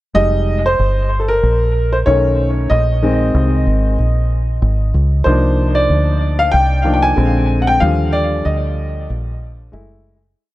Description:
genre	hip hop, jazz-hop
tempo	94 BPM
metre	4/4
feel	swing 59% on 16ths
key	unclear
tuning	A4 = 439 Hz
part	clear upright piano	accompaniment	0.1-10.2 s	D3 to Ab5	-16 LUFS	equal	dub echo
part	deep dub fingered electric bass	bass	0.2-10.3 s	F1 to Eb2	-15 LUFS	equal	none
room	small room ambience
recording	echo-heavy mix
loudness	-13 LUFS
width	side -16 dB against mid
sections	0.2-10.4 head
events	upright piano solo 0.2-10.4; fade-out 7.8-10.4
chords	0.2 Fm9; 2.1 B9; 2.7 Bb9sus4; 5.3 Cm11; 7.2 Bb9; 7.8 Ebmaj9; 9.7 Gbm9

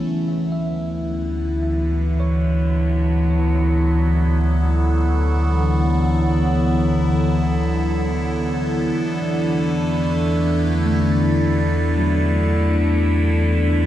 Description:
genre	ambient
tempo	54 BPM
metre	4/4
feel	straight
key	D major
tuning	A4 = 440 Hz
part	evolving wavetable pad	sustained chords	0.0-13.9 s	D3 to A4	-22 LUFS	equal	phaser, built-in reverb
part	bell-like tine electric piano	arpeggios	0.0-13.9 s	D3 to E5	-29 LUFS	equal	lush chorus, tape echo
part	warm sub bass	bass	0.0-13.9 s	D2 to E2	-20 LUFS	equal	none
part	analog drone	drone	0.0-13.9 s	E3	-24 LUFS	right 1 dB	chorus
part	glass harmonica	texture	9.0-13.9 s	D4 to D5	-26 LUFS	left 3 dB	none
room	moderate cathedral reverb, RT60 4.8 s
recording	dark, warm production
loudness	-17 LUFS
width	side -12 dB against mid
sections	0.0-13.9 A section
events	fade-in on tine electric piano 0.0-13.9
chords	0.1 D69; 9.0 E7sus4

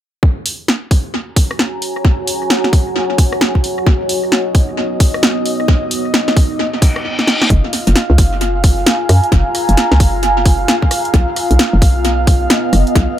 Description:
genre	UK garage, two-step garage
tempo	132 BPM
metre	4/4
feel	swing 62% on 16ths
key	F# major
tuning	A4 = 440 Hz
part	electronic kick drum	drums	0.2-13.1 s	none	-13 LUFS	equal	none
part	deep dark ambient pad	texture	1.5-13.2 s	B3 to A#5	-20 LUFS	right 1 dB	chorus, built-in reverb, sidechain pumping
part	punchy analog drum machine	drums	0.5-13.1 s	hi-hat, rim click, snare drum	-17 LUFS	equal	tape echo
part	airy breathy pad	sustained chords	3.9-13.2 s	D#4 to E#5	-21 LUFS	equal	chorus, sidechain pumping
part	reverse cymbal	sound effects	6.8-7.5 s	none	-19 LUFS	left 2 dB	none
part	hollow knocking FM bass	bass	7.5-13.1 s	F#1 to F#2	-13 LUFS	equal	none
room	light reverb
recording	echo-heavy mix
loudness	-11 LUFS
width	side -11 dB against mid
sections	0.2-7.5 A section; 7.5-13.2 B section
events	reverse cymbal 6.8-7.5; drum fill 7.2-7.5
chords	0.2 F#add9; 3.9 Bmaj9; 7.5 F#maj9; 11.1 Bmaj7

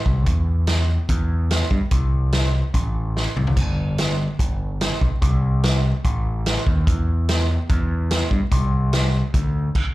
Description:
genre	classic rock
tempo	145 BPM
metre	4/4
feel	straight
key	unclear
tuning	A4 = 440 Hz
part	growling picked electric bass	bass	0.1-9.7 s	G1 to G2	-20 LUFS	equal	overdrive
part	vintage drum kit	drums	0.1-9.8 s	crash cymbal, hi-hat, kick drum, snare drum, splash cymbal, toms	-22 LUFS	equal	none
room	little or no reverb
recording	live gig heard through the venue's PA, club reverb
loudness	-18 LUFS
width	side -18 dB against mid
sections	0.0-9.9 A section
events	drum fill 3.2-3.6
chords	none

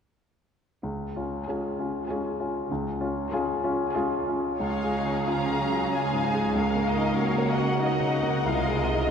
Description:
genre	classical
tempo	95 BPM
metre	3/4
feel	uneven beats, rubato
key	Db major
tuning	A4 = 443 Hz
part	clear grand piano	melody	0.8-9.1 s	C2 to Bb4	-27 LUFS	left 1 dB	none
part	dark symphonic cello section	bass	0.8-9.1 s	C3 to Db3	-35 LUFS	right 3 dB	none
part	warm symphonic violin section	second line	1.5-9.1 s	Ab4 to Ab5	-33 LUFS	equal	none
part	clear symphonic viola section	accompaniment	1.5-9.1 s	F3 to F4	-33 LUFS	right 2 dB	none
part	warm symphonic violin section	melody	4.6-9.1 s	Eb5 to Bb5	-31 LUFS	left 2 dB	none
part	warm symphonic double bass section	bass	4.6-9.1 s	C2 to Db2	-34 LUFS	right 3 dB	none
room	wet cathedral reverb, RT60 5.2 s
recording	recorded in a church or concert hall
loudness	-24 LUFS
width	side -7 dB against mid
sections	0.8-4.6 A section; 4.6-9.1 B section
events	none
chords	0.8 Db; 6.6 Ebm7/Db; 8.4 Ab/C

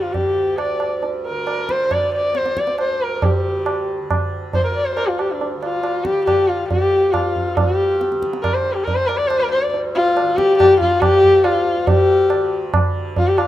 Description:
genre	indian classical, Hindustani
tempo	138 BPM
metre	5/4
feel	straight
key	D raga malkauns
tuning	A4 = 438 Hz
part	dark sarangi	melody	0.0-13.5 s	D4 to D5	-16 LUFS	left 1 dB	none
part	tanpura	drone	0.0-13.5 s	D2 to D3	-30 LUFS	right 2 dB	none
part	tabla	percussion	0.1-13.5 s	none	-22 LUFS	right 2 dB	none
room	light reverb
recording	rough home demo mix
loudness	-15 LUFS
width	side -13 dB against mid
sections	0.0-7.6 A section; 7.6-13.5 B section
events	speeding up 0.0-13.5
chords	none

